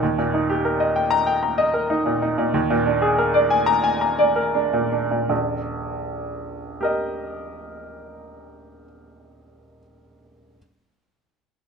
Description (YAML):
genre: classical, virtuoso piano study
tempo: 77-96 BPM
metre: 4/4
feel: rubato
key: Eb major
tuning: A4 = 440 Hz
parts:
  - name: bright baby grand piano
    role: solo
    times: 0.0-10.6 s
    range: Eb1 to Bb5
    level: -19 LUFS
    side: equal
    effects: none
room: light reverb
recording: minimal, uncompressed stereo recording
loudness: -19 LUFS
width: side -5 dB against mid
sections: 0.0-5.3 A section; 5.3-8.3 B section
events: slowing down 0.0-5.3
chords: 0.0 Eb; 2.5 Bb7/Eb; 5.3 Eb